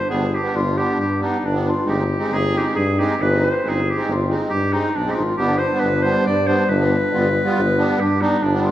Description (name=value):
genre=klezmer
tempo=137 BPM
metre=4/4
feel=straight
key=G phrygian dominant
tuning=A4 = 440 Hz
part: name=bright clarinet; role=melody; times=0.0-8.7 s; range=D4 to D5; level=-21 LUFS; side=equal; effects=none
part: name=musette accordion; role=accompaniment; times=0.1-8.7 s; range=G3 to F4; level=-22 LUFS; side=right 1 dB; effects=none
part: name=mellow tuba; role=bass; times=0.1-8.7 s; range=G1 to G2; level=-22 LUFS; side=equal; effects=none
room=wet recital hall reverb, RT60 1.5 s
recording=recorded in a church or concert hall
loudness=-17 LUFS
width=side -13 dB against mid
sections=0.0-8.7 A section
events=speeding up 0.0-8.7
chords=0.0 G; 1.9 Ab/G; 5.4 G